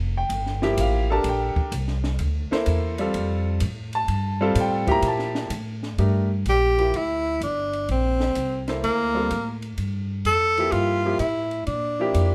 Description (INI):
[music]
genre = modal jazz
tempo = 126 BPM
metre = 4/4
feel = swing 68% on 8ths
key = G dorian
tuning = A4 = 440 Hz
[part]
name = upright bass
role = bass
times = 0.0-12.3 s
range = F1 to Bb2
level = -28 LUFS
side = equal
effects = none
[part]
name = clear baby grand piano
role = accompaniment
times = 0.2-12.3 s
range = F3 to Bb5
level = -27 LUFS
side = equal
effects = none
[part]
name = compact cocktail drum kit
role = drums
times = 0.3-12.3 s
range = hi-hat, kick drum, ride cymbal, snare drum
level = -36 LUFS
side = equal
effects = none
[part]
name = breathy tenor saxophone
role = melody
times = 6.5-12.3 s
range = Bb3 to A4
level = -25 LUFS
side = equal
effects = none
[sound]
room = light reverb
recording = none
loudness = -24 LUFS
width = mono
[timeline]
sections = 0.0-6.0 A section; 6.0-12.3 B section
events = none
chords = 0.0 Gm11